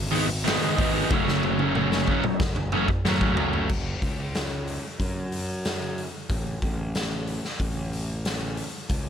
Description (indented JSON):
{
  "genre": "quiet-loud alternative rock",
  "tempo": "92 BPM",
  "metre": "4/4",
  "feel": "straight",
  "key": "F# dorian, F# minor from 3.7 s",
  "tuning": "A4 = 442 Hz",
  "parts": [
    { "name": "fuzz picked electric bass", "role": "bass", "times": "0.0-9.1 s", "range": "F#1 to F#2", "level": "-30 LUFS", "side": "equal", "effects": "overdrive" },
    { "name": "overdriven electric guitar", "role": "riff", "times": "0.1-3.7 s", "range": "F#2 to D#4", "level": "-23 LUFS", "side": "equal", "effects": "none" },
    { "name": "raw garage drum kit", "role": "drums", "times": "0.1-9.0 s", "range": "crash cymbal, hi-hat, kick drum, snare drum, toms", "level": "-27 LUFS", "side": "equal", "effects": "none" }
  ],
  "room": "light reverb",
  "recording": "none",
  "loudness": "-23 LUFS",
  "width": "side -8 dB against mid",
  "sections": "0.0-3.7 A section; 3.7-9.1 B section",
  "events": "drum fill 1.1-3.7",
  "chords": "0.0 G#m; 1.1 F#m; 3.7 F#5; 6.3 N.C."
}